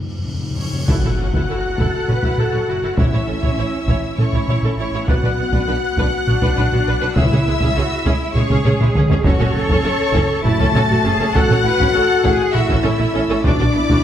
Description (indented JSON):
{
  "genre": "cinematic, epic orchestral film score",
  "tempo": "201 BPM (eighths)",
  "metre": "7/8",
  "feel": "straight",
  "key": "F# minor",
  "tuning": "A4 = 440 Hz",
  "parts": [
    { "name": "timpani", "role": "percussion", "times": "0.0-1.8, 7.2-8.0 s", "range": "F#2 to C#3", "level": "-25 LUFS", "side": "left 2 dB", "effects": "none" },
    { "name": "cymbal swell and impact", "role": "sound effects", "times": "0.3-3.0 s", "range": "none", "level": "-27 LUFS", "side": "equal", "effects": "none" },
    { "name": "rich symphonic violin section", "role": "melody", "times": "0.6-14.0 s", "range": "C#6 to A6", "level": "-26 LUFS", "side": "left 2 dB", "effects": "none" },
    { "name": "warm symphonic violin section", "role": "second line", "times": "0.6-14.0 s", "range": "C#5 to A5", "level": "-25 LUFS", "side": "left 4 dB", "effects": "none" },
    { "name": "warm French horn section", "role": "sustained chords", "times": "0.6-14.0 s", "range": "A3 to F#4", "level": "-23 LUFS", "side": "left 4 dB", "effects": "none" },
    { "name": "rich symphonic viola section", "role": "accompaniment", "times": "0.9-14.0 s", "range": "G#3 to C#5", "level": "-25 LUFS", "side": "right 2 dB", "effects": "none" },
    { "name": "rich symphonic double bass section", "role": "bass", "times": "0.9-14.0 s", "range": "F#1 to C#2", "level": "-22 LUFS", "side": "right 3 dB", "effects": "none" },
    { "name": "solo taiko drums", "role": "drums", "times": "0.9-14.0 s", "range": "none", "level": "-19 LUFS", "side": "equal", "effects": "none" },
    { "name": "warm symphonic cello section", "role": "bass", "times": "1.5-14.0 s", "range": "B3 to B4", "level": "-24 LUFS", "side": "right 3 dB", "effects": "none" }
  ],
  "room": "moderate scoring stage reverb, RT60 1.6 s",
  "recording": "none",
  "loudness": "-15 LUFS",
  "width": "side -10 dB against mid",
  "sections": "0.9-14.0 A section",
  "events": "break 0.0-0.9; timpani fill 0.0-0.9; cymbal swell 0.3-0.9; drum fill 0.4-0.9, 8.8-9.3; impact 0.9-3.0",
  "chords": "0.0 F#5; 0.9 F#m7; 3.0 A; 5.1 Bm; 7.2 C#m; 9.3 F#m7; 11.3 A; 13.4 Bm"
}